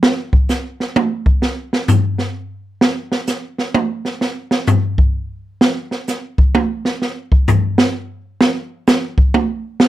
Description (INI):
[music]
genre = jazz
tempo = 129 BPM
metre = 3/4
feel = swing 65% on 8ths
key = none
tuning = none
[part]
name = open jazz drum kit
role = drums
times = 0.0-9.9 s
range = hi-hat, kick drum, snare drum, toms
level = -14 LUFS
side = equal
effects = none
[sound]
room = light reverb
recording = close, detailed microphones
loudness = -15 LUFS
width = side -14 dB against mid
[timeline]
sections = 0.0-9.9 A section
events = drum solo 0.0-9.9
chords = none